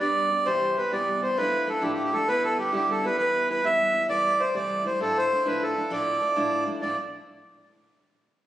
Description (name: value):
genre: celtic folk, Celtic slide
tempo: 132 BPM (dotted quarters)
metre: 12/8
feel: straight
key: D dorian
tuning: A4 = 439 Hz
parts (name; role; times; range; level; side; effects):
- accordion; melody; 0.0-7.0 s; G4 to E5; -23 LUFS; right 1 dB; none
- picked steel-string acoustic guitar; accompaniment; 0.0-7.0 s; D2 to G4; -31 LUFS; equal; none
room: wet recital hall reverb, RT60 1.6 s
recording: recorded on a phone in the room, studio reverb, compression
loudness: -22 LUFS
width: side -13 dB against mid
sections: 0.0-6.8 A section; 6.8-8.5 B section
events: none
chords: 0.5 Cmaj7; 1.4 Dmadd9; 2.3 G6/D; 3.2 Em; 4.1 C6; 5.0 Dmadd9